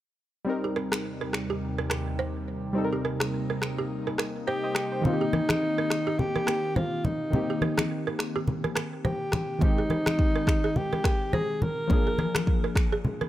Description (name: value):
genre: afrobeats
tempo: 105 BPM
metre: 4/4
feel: swing 58% on 16ths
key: Eb major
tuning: A4 = 441 Hz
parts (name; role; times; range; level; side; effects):
- warm analog keys; accompaniment; 0.4-13.3 s; Eb3 to G5; -31 LUFS; left 1 dB; chorus
- airy breathy pad; sustained chords; 0.8-5.0 s; Eb2 to Eb4; -34 LUFS; right 1 dB; chorus
- balafon; riff; 0.6-13.3 s; G4 to C5; -33 LUFS; right 5 dB; digital delay
- afro-pop drum kit; drums; 0.9-12.9 s; finger snaps, kick drum, rim click; -26 LUFS; equal; none
- breathy alto saxophone; melody; 4.5-12.8 s; Eb4 to Bb4; -29 LUFS; equal; digital delay
- congas; percussion; 5.0-13.3 s; none; -29 LUFS; left 1 dB; none
room: little or no reverb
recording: none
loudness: -25 LUFS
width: side -14 dB against mid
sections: 0.5-5.0 A section; 5.0-13.3 B section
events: kick muted 2.8-5.0; hi-hats muted 5.0-13.3; synth keys fill 13.0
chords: 0.5 Eb6; 2.8 Cm7; 5.0 Eb6; 9.6 Abmaj7; 11.9 Bb7